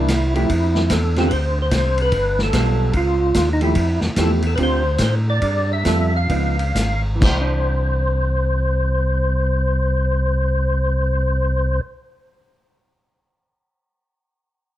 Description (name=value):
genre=soul jazz organ trio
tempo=126-148 BPM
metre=4/4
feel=swing 64% on 8ths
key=C major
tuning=A4 = 439 Hz
part: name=percussive tonewheel organ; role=melody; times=0.0-11.8 s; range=Eb4 to F5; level=-22 LUFS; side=equal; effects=slow rotary speaker, chorus vibrato
part: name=archtop guitar, miked and amplified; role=accompaniment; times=0.0-12.4 s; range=D3 to A4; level=-24 LUFS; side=right 2 dB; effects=none
part: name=tonewheel organ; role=bass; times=0.0-11.8 s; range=G1 to A2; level=-19 LUFS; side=equal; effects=overdrive, chorus vibrato, slow rotary speaker
part: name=vintage drum kit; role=drums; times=0.1-7.4 s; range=china cymbal, hi-hat, kick drum, ride cymbal, snare drum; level=-23 LUFS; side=equal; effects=none
room=light reverb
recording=dark, warm production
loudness=-16 LUFS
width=side -13 dB against mid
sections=0.5-7.2 A section; 7.2-11.0 B section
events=slowing down 3.8-7.2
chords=0.0 Cadd9; 0.5 Fsus2; 1.3 Csus2; 2.1 G9; 2.9 Dbadd9; 3.8 Fmaj9; 4.6 Dm7; 5.4 G9; 6.3 Db9; 7.2 Cadd9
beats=0.09 | 0.50 0.91 1.31 1.72 | 2.13 2.53 2.94 3.35 | 3.75 4.16 4.57 4.99 | 5.41 5.84 6.29 6.74 | 7.21 7.69 8.17 8.65 | 9.13 9.60 10.08 10.56